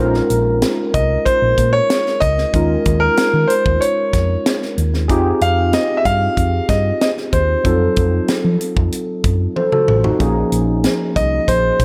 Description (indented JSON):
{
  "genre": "polished 1980s jazz-funk pop",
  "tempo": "94 BPM",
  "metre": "4/4",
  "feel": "straight",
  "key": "F minor",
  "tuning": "A4 = 440 Hz",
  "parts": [
    { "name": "overdriven tine electric piano", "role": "accompaniment", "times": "0.0-11.8 s", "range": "F3 to C5", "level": "-22 LUFS", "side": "equal", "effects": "analog chorus" },
    { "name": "hollow-body short-scale fingered electric bass", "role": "bass", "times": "0.0-11.8 s", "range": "A1 to F3", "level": "-21 LUFS", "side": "equal", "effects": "none" },
    { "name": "tight funk drum kit", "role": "drums", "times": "0.1-11.8 s", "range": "hi-hat, kick drum, snare drum, toms", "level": "-22 LUFS", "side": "equal", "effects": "gated reverb" },
    { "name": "bright concert grand piano", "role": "melody", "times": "0.9-11.8 s", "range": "Bb4 to F5", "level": "-19 LUFS", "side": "equal", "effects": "none" }
  ],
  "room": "light reverb",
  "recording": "none",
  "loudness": "-16 LUFS",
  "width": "mono",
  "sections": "0.0-11.8 A section",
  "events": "drum fill 9.6-10.2",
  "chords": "0.0 Bbm11; 2.5 Eb7sus4; 5.1 Fm9; 7.7 F7b9; 10.2 Bbm11"
}